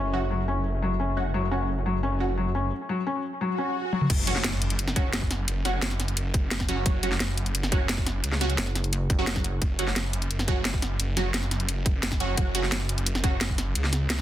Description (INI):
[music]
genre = dark technical drum and bass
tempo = 174 BPM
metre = 4/4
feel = straight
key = F# minor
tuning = A4 = 436 Hz
[part]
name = dark analog pad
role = sustained chords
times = 0.0-2.7 s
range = F#4 to E5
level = -39 LUFS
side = left 2 dB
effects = chorus, sidechain pumping
[part]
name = felt-muted upright piano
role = arpeggios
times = 0.0-4.0 s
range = F#3 to C#4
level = -29 LUFS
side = left 3 dB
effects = sidechain pumping, dub echo
[part]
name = snarling distorted saw bass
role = bass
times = 0.0-14.2 s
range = F#1 to C#2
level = -28 LUFS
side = equal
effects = distortion, overdrive, sidechain pumping
[part]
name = orchestra-hit-like synth stab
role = stabs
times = 0.1-13.3 s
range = F#3 to F#4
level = -32 LUFS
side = right 3 dB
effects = built-in reverb, phaser, dub echo
[part]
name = swell and impact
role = sound effects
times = 3.5-5.5 s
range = none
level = -33 LUFS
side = right 1 dB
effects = none
[part]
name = drum and bass drum kit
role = drums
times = 3.9-14.2 s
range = crash cymbal, hi-hat, snare drum, toms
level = -28 LUFS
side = equal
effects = overdrive, low-pass filter on toms, low-pass filter on hats, low-pass filter on cymbals, low-pass filter on snare
[part]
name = electronic kick drum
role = drums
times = 4.1-13.6 s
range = none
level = -26 LUFS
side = equal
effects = overdrive
[part]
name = pulsing pluck wobble bass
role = bass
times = 8.6-9.6 s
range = F#1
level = -28 LUFS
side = equal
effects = chorus
[sound]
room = light reverb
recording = dense, heavily limited modern master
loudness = -24 LUFS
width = side -12 dB against mid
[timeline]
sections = 0.0-4.1 A section; 4.1-14.2 B section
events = swell 3.5-4.1; drum fill 3.9; drop 4.1-14.2; impact 4.1-5.5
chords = 0.0 F#m; 4.1 F#5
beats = 0.31 0.65 1.00 | 1.34 1.69 2.03 2.38 | 2.72 3.06 3.41 3.75 | 4.10 4.44 4.79 5.13 | 5.48 5.82 6.17 6.51 | 6.86 7.20 7.55 7.89 | 8.24 8.58 8.93 9.27 | 9.62 9.96 10.31 10.65 | 11.00 11.34 11.69 12.03 | 12.38 12.72 13.06 13.41 | 13.75 14.10